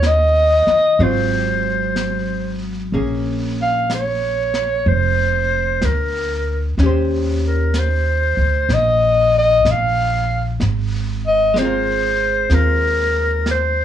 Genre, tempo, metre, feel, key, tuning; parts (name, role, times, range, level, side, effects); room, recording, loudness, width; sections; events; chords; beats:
jazz ballad; 63 BPM; 4/4; swing 67% on 8ths; Bb minor; A4 = 440 Hz
clear clarinet; melody; 0.0-13.8 s; Bb4 to F5; -16 LUFS; left 1 dB
archtop guitar, miked and amplified; accompaniment; 0.0-13.8 s; Eb3 to C5; -23 LUFS; equal
upright bass; bass; 0.0-13.8 s; F1 to Eb2; -20 LUFS; right 1 dB
jazz brush drum kit; drums; 0.0-13.8 s; brushed snare drum, hi-hat, snare drum; -31 LUFS; right 1 dB
light reverb; worn, warbling old tape, cassette tape, warbly pitch drift, small room ambience; -15 LUFS; side -10 dB against mid
0.0-2.9 A section; 2.9-13.8 B section
0.0 Ebm7; 1.0 Ab6; 2.9 Bbm9; 6.8 Eb6; 10.6 Ab69
0.02 0.98 1.95 | 2.92 3.89 4.85 5.82 | 6.77 7.73 8.69 9.65 | 10.60 11.55 12.51 13.46